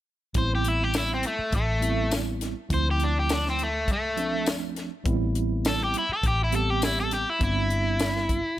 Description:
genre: straight-eighth soul blues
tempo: 102 BPM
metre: 4/4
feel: straight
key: A minor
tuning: A4 = 441 Hz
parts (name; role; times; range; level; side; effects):
- mellow tine electric piano; accompaniment; 0.3-8.4 s; F3 to G4; -31 LUFS; right 4 dB; medium stereo tremolo
- tight funk drum kit; drums; 0.3-8.4 s; hi-hat, kick drum, snare drum, tambourine; -29 LUFS; left 1 dB; none
- crunchy overdriven guitar; melody; 0.4-8.6 s; A3 to C5; -27 LUFS; left 1 dB; none
- vintage muted fingered electric bass; bass; 0.4-8.4 s; G1 to D2; -28 LUFS; equal; none
room: studio ambience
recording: none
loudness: -23 LUFS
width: side -13 dB against mid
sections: 0.3-8.6 A section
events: overdriven electric guitar solo 0.3-8.6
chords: 0.3 Am7; 2.7 Dm7; 5.1 Am7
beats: | 0.35 0.93 1.52 2.11 | 2.70 3.29 3.88 4.47 | 5.05 5.64 6.23 6.82 | 7.41 8.00 8.59

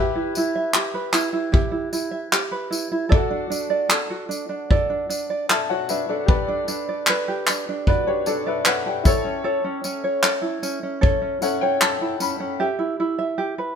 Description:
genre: acoustic pop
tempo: 76 BPM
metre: 4/4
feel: straight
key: unclear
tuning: A4 = 440 Hz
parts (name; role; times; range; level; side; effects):
- clear upright piano; accompaniment; 0.0-12.6 s; E4 to B5; -27 LUFS; left 6 dB; none
- tenor ukulele; accompaniment; 0.0-13.8 s; C#4 to E5; -24 LUFS; right 3 dB; none
- natural country drum kit; drums; 0.4-12.4 s; handclaps, kick drum, tambourine; -20 LUFS; equal; none
room: moderate stone room reverb, RT60 1.1 s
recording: band playing live in one room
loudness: -20 LUFS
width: side -7 dB against mid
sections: 0.0-12.6 A section; 12.6-13.8 A section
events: upright piano fill 11.0-12.6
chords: 0.0 Em; 3.1 D; 6.3 G; 9.0 A; 12.6 Em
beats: 0.74 1.53 2.33 | 3.12 3.91 4.70 5.49 | 6.28 7.07 7.86 8.65 | 9.45 10.23 11.03 11.82 | 12.61 13.40

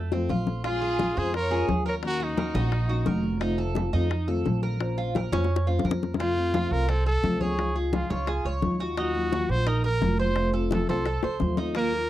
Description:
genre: latin, Cuban son and guajira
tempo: 173 BPM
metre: 4/4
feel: straight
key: unclear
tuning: A4 = 438 Hz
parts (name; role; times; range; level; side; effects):
- Cuban tres; arpeggios; 0.0-12.1 s; A3 to Db5; -33 LUFS; right 4 dB; none
- upright bass; bass; 0.0-12.1 s; F1 to F2; -28 LUFS; right 1 dB; none
- nylon-string guitar; accompaniment; 0.1-12.1 s; C3 to C5; -31 LUFS; left 3 dB; none
- bongos; percussion; 0.1-12.1 s; none; -32 LUFS; left 8 dB; none
- congas; percussion; 0.1-12.1 s; none; -32 LUFS; left 2 dB; none
- warm trumpet; melody; 0.7-3.3, 6.2-12.1 s; Eb4 to C5; -29 LUFS; right 1 dB; none
- clear studio violin section; second line; 0.7-3.3 s; Gb4 to Db5; -37 LUFS; left 2 dB; none
room: light reverb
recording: dry, close 1970s-style studio recording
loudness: -23 LUFS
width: side -13 dB against mid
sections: 0.0-6.2 A section; 6.2-12.1 B section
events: drum fill 0.0-0.6, 5.3-6.2, 11.2-11.8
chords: 0.0 F; 0.6 Bbm7; 2.0 Ebm7; 3.4 F7; 4.8 Bbmadd9; 6.2 F; 7.6 Dbadd9; 9.0 Ebmadd9; 10.4 F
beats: 0.30 | 0.64 0.99 1.34 1.68 | 2.03 2.38 2.72 3.07 | 3.42 3.77 4.11 4.46 | 4.81 5.15 5.50 5.85 | 6.19 6.54 6.89 7.24 | 7.58 7.93 8.28 8.62 | 8.97 9.32 9.67 10.02 | 10.36 10.71 11.06 11.41 | 11.75

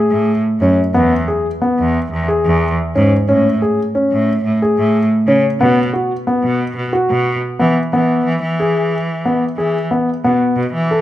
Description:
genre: contemporary instrumental, chamber music in an uneven meter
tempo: 181 BPM (eighths)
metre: 7/8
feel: straight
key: E major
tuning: A4 = 439 Hz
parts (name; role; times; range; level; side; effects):
- dark concert grand piano; arpeggios; 0.0-11.0 s; B3 to A4; -15 LUFS; left 1 dB; none
- clear cello; bass; 0.1-11.0 s; E2 to E3; -17 LUFS; right 1 dB; none
room: light reverb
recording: close, detailed microphones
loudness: -13 LUFS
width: side -13 dB against mid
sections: 0.0-7.9 A section; 7.9-11.0 B section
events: none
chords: 0.0 Amaj7; 0.9 E; 3.3 Amaj7; 5.6 B5; 7.9 E; 10.2 B7sus4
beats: 0.28 0.61 | 0.94 1.28 1.61 1.94 2.28 2.61 2.94 | 3.28 3.61 3.94 4.27 4.61 4.94 5.27 | 5.60 5.93 6.27 6.60 6.93 7.26 7.59 | 7.92 8.25 8.59 8.92 9.25 9.58 9.91 | 10.24 10.57 10.90

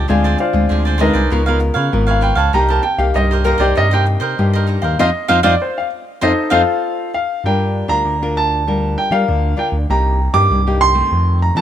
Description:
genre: samba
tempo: 98 BPM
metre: 4/4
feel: straight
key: G minor from 7.4 s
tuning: A4 = 440 Hz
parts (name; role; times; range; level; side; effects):
- warm grand piano; melody; 0.0-11.6 s; Eb4 to D6; -17 LUFS; equal; none
- cavaquinho; accompaniment; 0.0-6.6 s; Eb4 to F5; -21 LUFS; right 5 dB; none
- nylon-string guitar; accompaniment; 0.0-11.6 s; F2 to Bb4; -20 LUFS; left 3 dB; none
- smooth gliding synth bass; bass; 0.0-11.6 s; Ab1 to G3; -17 LUFS; equal; none
room: light reverb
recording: minimal, uncompressed stereo recording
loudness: -13 LUFS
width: side -10 dB against mid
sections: 0.0-7.4 A section; 7.4-11.6 B section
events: grand piano solo 0.0-7.4; band accent 5.0-7.4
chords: 0.1 Dm7b5; 1.3 Db13; 2.5 Cm7; 5.0 F7; 7.4 Gm7; 9.9 Cm7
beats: | 0.09 0.71 1.32 1.93 | 2.54 3.16 3.77 4.38 | 4.99 5.60 6.22 6.83 | 7.44 8.05 8.67 9.28 | 9.89 10.51 11.12

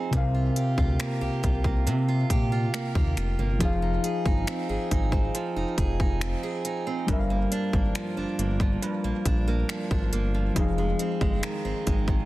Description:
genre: contemporary R&B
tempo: 69 BPM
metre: 4/4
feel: straight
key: F dorian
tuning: A4 = 437 Hz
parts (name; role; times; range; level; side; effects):
- muted felt-like synth keys; accompaniment; 0.0-12.3 s; C3 to F5; -30 LUFS; left 2 dB; chorus
- picked old ladder-braced acoustic guitar; arpeggios; 0.0-12.3 s; F2 to Ab4; -31 LUFS; right 4 dB; digital delay
- smooth synth bass; bass; 0.1-12.2 s; F1 to C3; -27 LUFS; equal; none
- trap drum kit; drums; 0.1-12.3 s; finger snaps, hi-hat, kick drum; -27 LUFS; equal; soft clipping on snare
room: little or no reverb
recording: dense, heavily limited modern master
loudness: -24 LUFS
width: side -17 dB against mid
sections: 0.0-12.3 A section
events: none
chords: 0.1 C7sus4; 3.6 Fm7; 7.1 Gm7; 10.6 Fm7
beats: | 0.13 1.00 1.87 2.73 | 3.60 4.47 5.34 6.21 | 7.08 7.95 8.82 9.69 | 10.56 11.43

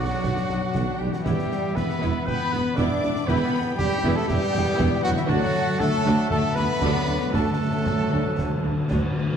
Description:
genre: cinematic, heroic adventure film score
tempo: 118 BPM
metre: 4/4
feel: straight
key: unclear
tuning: A4 = 440 Hz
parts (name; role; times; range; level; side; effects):
- dark symphonic violin section; melody; 0.0-8.9 s; E5 to D6; -36 LUFS; left 2 dB; none
- concert flute; second line; 0.0-8.9 s; E5 to D6; -37 LUFS; left 2 dB; none
- warm oboe; second line; 0.0-9.1 s; D5 to B5; -36 LUFS; equal; none
- warm symphonic violin section; second line; 0.0-8.9 s; E5 to D6; -37 LUFS; left 3 dB; none
- rich symphonic viola section; accompaniment; 0.0-9.2 s; B3 to F#4; -32 LUFS; right 2 dB; none
- mellow French horn section; sustained chords; 0.0-8.9 s; E3 to D4; -31 LUFS; left 5 dB; none
- mellow trombone section; sustained chords; 0.0-9.1 s; D3 to B3; -34 LUFS; equal; none
- concert harp; arpeggios; 0.0-9.1 s; B2 to E5; -36 LUFS; left 8 dB; none
- clear trumpet; stabs; 0.0-8.9 s; E4 to D5; -29 LUFS; right 1 dB; none
- dark tuba; bass; 0.0-9.3 s; E1 to D2; -30 LUFS; right 3 dB; none
- rich symphonic cello section; bass; 0.0-8.9 s; E3 to D4; -30 LUFS; right 1 dB; none
- rich symphonic double bass section; bass; 0.0-9.3 s; B1 to E2; -30 LUFS; right 3 dB; none
- concert snare drum, concert bass drum and clash cymbals; drums; 0.2-9.1 s; none; -31 LUFS; equal; none
- timpani; percussion; 5.3-9.4 s; D3; -28 LUFS; left 1 dB; none
room: moderate scoring stage reverb, RT60 1.8 s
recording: dark, warm production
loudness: -21 LUFS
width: side -7 dB against mid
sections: 0.0-9.4 A section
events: timpani fill 5.3-9.4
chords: 0.0 Bm; 1.3 Em; 5.3 D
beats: 0.24 0.75 | 1.26 1.77 2.28 2.78 | 3.29 3.79 4.29 4.80 | 5.30 5.80 6.31 6.82 | 7.34 7.87 8.39 8.91

